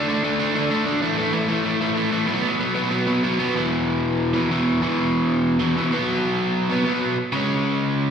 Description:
punk; 190 BPM; 4/4; straight; E major; A4 = 440 Hz
overdriven electric guitar; solo; 0.0-8.1 s; E2 to D4; -19 LUFS; equal; slapback echo
light reverb; live gig heard through the venue's PA, recital hall reverb; -19 LUFS; side -7 dB against mid
0.0-3.5 A section; 3.5-8.1 B section
0.0 D5; 1.0 A5; 2.3 B5; 3.5 E5; 5.9 B5; 7.3 C#5

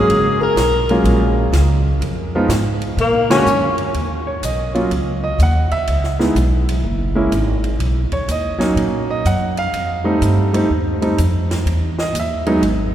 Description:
jazz, small-group swing and bop; 124 BPM; 4/4; swing 66% on 8ths; Eb minor; A4 = 441 Hz
mellow tenor saxophone; melody; 0.0-3.8 s; Bb3 to Bb4; -20 LUFS; left 3 dB
breathy alto saxophone; second line; 0.0-3.7 s; Bb3 to Bb4; -25 LUFS; equal
clear concert grand piano; accompaniment; 0.0-12.9 s; D3 to Gb5; -19 LUFS; right 1 dB
upright bass; bass; 0.0-12.9 s; Gb1 to Bb2; -18 LUFS; equal
compact cocktail drum kit; drums; 0.1-12.8 s; hi-hat, kick drum, ride cymbal, snare drum; -29 LUFS; equal
wet cathedral reverb, RT60 4.5 s; recorded in a church or concert hall; -15 LUFS; side -11 dB against mid
0.0-3.9 A section; 3.9-12.9 B section
band accent 3.2
0.1 Gbmaj9; 2.0 Fm7b5; 3.0 Bb7alt; 3.9 Ebm7; 5.9 Dbm7; 6.8 Gb9; 7.8 Bmaj7; 9.7 F9; 11.7 Emaj7

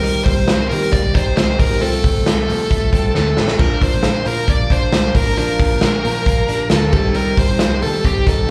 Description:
jangly indie pop; 135 BPM; 4/4; straight; Bb major; A4 = 439 Hz
dark smooth lead guitar; melody; 0.0-8.5 s; G4 to D5; -22 LUFS; equal; overdrive, plate reverb, slapback echo
picked steel-string acoustic guitar; accompaniment; 0.0-8.5 s; Bb2 to Bb4; -30 LUFS; equal
reed electric piano; accompaniment; 0.0-8.5 s; C4 to D5; -34 LUFS; equal
direct-recorded clean electric guitar; arpeggios; 0.0-8.5 s; F3 to Eb4; -28 LUFS; equal; plate reverb, slapback echo, analog delay
vintage muted fingered electric bass; bass; 0.0-8.5 s; A1 to C3; -24 LUFS; equal
raw garage drum kit; drums; 0.0-8.4 s; crash cymbal, hi-hat, kick drum, snare drum, splash cymbal; -19 LUFS; equal
rich symphonic violin section; second line; 3.1-8.5 s; G5 to D6; -36 LUFS; equal
light reverb; live gig heard through the venue's PA, club reverb; -16 LUFS; mono
0.0-8.5 A section
drum fill 3.1-3.6
0.0 Cm; 1.8 F/C; 3.6 Bb; 6.9 Cm

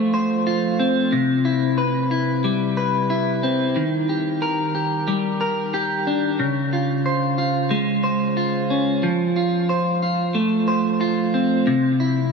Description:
dream pop; 91 BPM; 4/4; straight; F lydian; A4 = 440 Hz
clean electric guitar; solo; 0.0-12.3 s; C3 to C5; -18 LUFS; equal; wide subtle chorus, digital delay
wet huge ambient reverb, RT60 5.0 s; -18 LUFS; side -4 dB against mid
0.0-12.3 A section
0.0 F; 1.1 Cmaj7; 3.8 Ebmaj7; 6.4 Dbmaj7; 9.0 F; 11.7 C

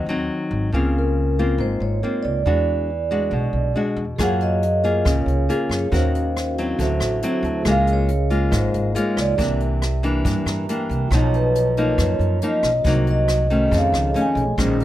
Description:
bossa nova; 139 BPM; 4/4; straight; A4 = 438 Hz
vibraphone with soft mallets; melody; 0.0-14.6 s; Bb4 to G#5; -24 LUFS; right 1 dB; plate reverb
nylon-string guitar; accompaniment; 0.0-14.8 s; F2 to Bb4; -23 LUFS; left 2 dB
upright bass; bass; 0.0-14.8 s; Ab1 to G2; -22 LUFS; right 1 dB
vibraphone with soft mallets; accompaniment; 4.2-14.8 s; Db4 to Bb5; -27 LUFS; right 2 dB
jazz brush drum kit; drums; 4.2-14.8 s; hi-hat, kick drum, rim click; -27 LUFS; right 1 dB
light reverb; -18 LUFS; side -13 dB against mid
0.0-14.8 A section
vibraphone fill 7.0-7.7, 10.2-11.1
0.0 Ab7; 0.7 Db6; 2.5 E9; 4.2 Gbmaj9; 5.9 Ebm7; 6.8 D9; 7.7 Db6; 9.4 C9; 11.1 Bmaj9#11; 12.8 Cm7b5; 13.7 F7alt

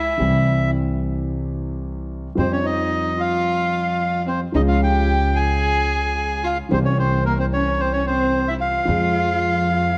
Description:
tango; 111 BPM; 4/4; rubato; F minor; A4 = 442 Hz
bandoneon; melody; 0.0-10.0 s; Bb4 to Ab5; -24 LUFS; equal
warm violin; second line; 0.0-10.0 s; Bb3 to Ab4; -28 LUFS; equal
warm concert grand piano; accompaniment; 0.0-10.0 s; C2 to Ab4; -26 LUFS; equal
upright bass; bass; 0.0-10.0 s; C2 to F2; -26 LUFS; equal
moderate concert hall reverb, RT60 2.0 s; -20 LUFS; mono
0.0-10.0 A section
0.2 C; 2.4 Fsus2; 4.5 Db; 6.7 C; 8.9 Fm

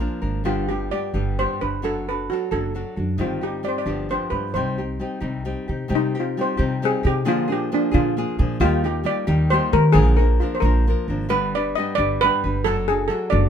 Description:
mexican folk, mariachi; 89 BPM (dotted quarters); 6/8; straight; C minor; A4 = 440 Hz
steel pan; melody; 0.0-13.5 s; D4 to Eb5; -23 LUFS; equal
nylon-string guitar; accompaniment; 0.0-13.5 s; G2 to B4; -26 LUFS; left 2 dB
upright bass; bass; 0.0-13.5 s; F#1 to Eb3; -22 LUFS; right 1 dB
light reverb; minimal, uncompressed stereo recording; -19 LUFS; side -8 dB against mid
0.0-5.9 A section; 5.9-13.5 A section
0.4 G; 1.8 D/F#; 3.2 Cm/G; 3.9 G7; 4.5 Cm; 7.3 Bb7; 8.6 Eb; 9.9 Bb; 11.3 G; 12.6 D/F#

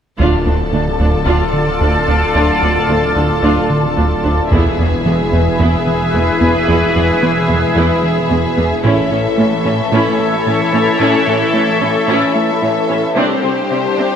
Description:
cinematic, hybrid orchestral and electronic film score; 111 BPM; 4/4; straight; D dorian; A4 = 444 Hz
rich symphonic violin section; second line; 0.2-14.2 s; G4 to A5; -20 LUFS; left 4 dB
rich symphonic viola section; accompaniment; 0.2-14.1 s; G3 to F4; -19 LUFS; equal
sweeping resonant pad; sustained chords; 0.7-14.2 s; D3 to D5; -16 LUFS; left 1 dB; chorus
round analog bass; riff; 0.2-14.1 s; C2 to A3; -19 LUFS; right 1 dB
rich symphonic cello section; bass; 0.2-14.0 s; D2 to C3; -21 LUFS; right 3 dB
wide detuned saw bass; bass; 0.2-14.2 s; D1 to C2; -23 LUFS; equal; chorus
taiko ensemble; drums; 0.2-1.2, 4.5-5.6, 8.8-9.9, 13.2-14.2 s; -24 LUFS; equal
wet scoring stage reverb, RT60 1.6 s; high-pass filter; -12 LUFS; side -8 dB against mid
0.2-14.2 A section
build-up 0.2-14.2; filter sweep 0.2-14.2
0.2 Dm; 4.5 E; 8.8 A; 13.2 Csus2

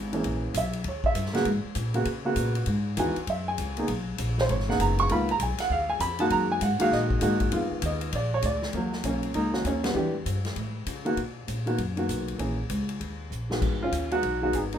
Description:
jazz piano trio; 198 BPM; 4/4; swing 63% on 8ths; Eb minor; A4 = 436 Hz
upright bass; bass; 0.0-14.8 s; F#1 to Db3; -30 LUFS; equal
dark baby grand piano; melody; 0.1-14.8 s; Db3 to C#6; -26 LUFS; right 1 dB
swinging big-band drum kit; drums; 0.1-14.8 s; crash cymbal, hi-hat, kick drum, ride cymbal, snare drum; -34 LUFS; left 2 dB
light reverb; minimal, uncompressed stereo recording; -25 LUFS; side -9 dB against mid
0.0-8.7 A section; 8.7-14.8 B section
grand piano solo 0.0-8.7; band accent 9.8; drum fill 13.3-13.6
0.3 Bbm7b5; 0.9 Eb7b9; 1.5 Abm11; 2.7 Ebmadd11; 3.3 Gb5; 3.9 Bmaj9; 5.1 Db13; 6.3 Gb69; 7.5 Fm7b5; 8.1 Bb; 8.7 Ebm7; 10.0 Em7; 10.6 A7; 11.2 Bmaj7; 12.4 Bbm7b5; 13.0 Eb5; 13.6 Abm7

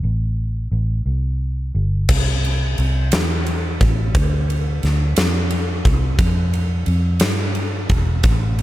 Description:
six-eight pop ballad; 58 BPM (dotted quarters); 6/8; straight; C major; A4 = 440 Hz
vintage muted fingered electric bass; bass; 0.0-8.6 s; E1 to G2; -18 LUFS; equal
huge arena drum kit; drums; 2.1-8.6 s; crash cymbal, kick drum, ride cymbal, snare drum; -20 LUFS; equal
little or no reverb; -17 LUFS; side -15 dB against mid
0.0-2.1 A section; 2.1-8.6 B section

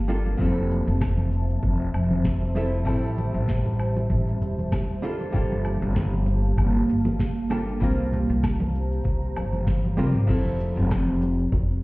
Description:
sunset chillout; 97 BPM; 4/4; swing 55% on 16ths; A4 = 440 Hz
archtop guitar, miked and amplified; accompaniment; 0.0-11.8 s; F3 to Bb4; -30 LUFS; equal; auto-pan, low-pass filter, tape echo
ethereal airy pad; sustained chords; 0.0-10.3 s; F3 to Bb5; -31 LUFS; right 2 dB; ensemble chorus, built-in reverb
upright bass; bass; 0.0-11.8 s; E1 to F2; -24 LUFS; equal
smooth R&B drum kit; drums; 0.1-11.8 s; crash cymbal, hi-hat, shaker, snare drum, toms, woodblock; -30 LUFS; equal; studio reverb
congas; percussion; 0.3-11.7 s; -33 LUFS; equal
electronic kick drum; drums; 0.4-11.7 s; -26 LUFS; equal; studio reverb
light reverb; heard muffled through a wall, stone room reverb, EQ; -21 LUFS; side -22 dB against mid
0.0-10.3 A section; 10.3-11.8 B section
drum fill 9.7-10.3
0.4 Fmaj7; 2.9 Am7; 5.0 Gm9; 7.8 C7sus4; 10.3 Fmaj7

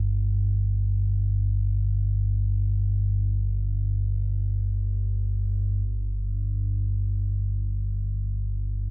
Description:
ambient; free time; A4 = 443 Hz
deep rumbling drone; solo; 0.0-8.9 s; G1 to G2; -24 LUFS; equal; built-in reverb
moderate huge ambient reverb, RT60 7.7 s; cassette tape; -24 LUFS; side -24 dB against mid
0.0-5.9 A section; 5.9-8.9 B section

